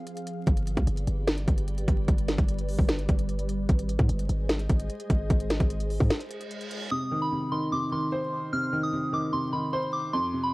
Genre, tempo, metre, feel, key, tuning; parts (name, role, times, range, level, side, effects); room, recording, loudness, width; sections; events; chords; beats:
hip hop, trap; 149 BPM; 4/4; half-time; C harmonic minor; A4 = 440 Hz
glassy FM pad; sustained chords; 0.0-6.9 s; F3 to F5; -37 LUFS; equal; ensemble chorus, built-in reverb, phaser
trap drum kit; drums; 0.1-6.8 s; hi-hat, kick drum, snare drum; -25 LUFS; equal
warm 808-style bass; bass; 0.5-6.1 s; G1 to Ab2; -28 LUFS; equal
reverse cymbal; sound effects; 6.3-6.9 s; -39 LUFS; right 3 dB
soft synth bell; melody; 6.9-10.5 s; B5 to F6; -29 LUFS; equal; chorus
dark baby grand piano; accompaniment; 6.9-10.5 s; F2 to C5; -29 LUFS; equal
little or no reverb; worn, warbling old tape, cassette tape, vinyl crackle, warbly pitch drift; -25 LUFS; side -21 dB against mid
0.0-6.9 A section; 6.9-10.5 B section
break 0.0-0.5, 6.1-6.9; reverse cymbal 6.3-6.9
0.5 G; 3.7 Ab; 6.9 Cm
0.07 | 0.47 0.87 1.27 1.68 | 2.08 2.48 2.88 3.29 | 3.69 4.09 4.50 4.90 | 5.30 5.70 6.11 6.51 | 6.91 7.32 7.72 8.12 | 8.52 8.93 9.33 9.73 | 10.13 10.54